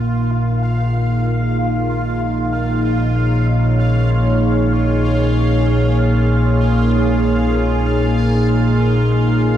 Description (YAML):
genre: dark ambient drone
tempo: free time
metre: none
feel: none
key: Bb minor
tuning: A4 = 440 Hz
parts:
  - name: dark analog pad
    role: sustained chords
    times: 0.0-9.6 s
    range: Bb3 to Db5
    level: -19 LUFS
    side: equal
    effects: chorus
  - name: dark detuned synth bell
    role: arpeggios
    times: 0.0-9.6 s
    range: none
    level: barely audible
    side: none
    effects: none
  - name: analog drone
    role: drone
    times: 0.0-9.6 s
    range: Bb1 to Bb2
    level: -16 LUFS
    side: equal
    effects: chorus
  - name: bubbling stepped-filter texture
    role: texture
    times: 0.0-9.6 s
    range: F4 to F5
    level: -25 LUFS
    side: equal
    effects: chorus, built-in reverb
room: wet cathedral reverb, RT60 5.3 s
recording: dark, warm production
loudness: -14 LUFS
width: side -10 dB against mid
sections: 0.0-9.6 A section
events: none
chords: 0.0 Bbm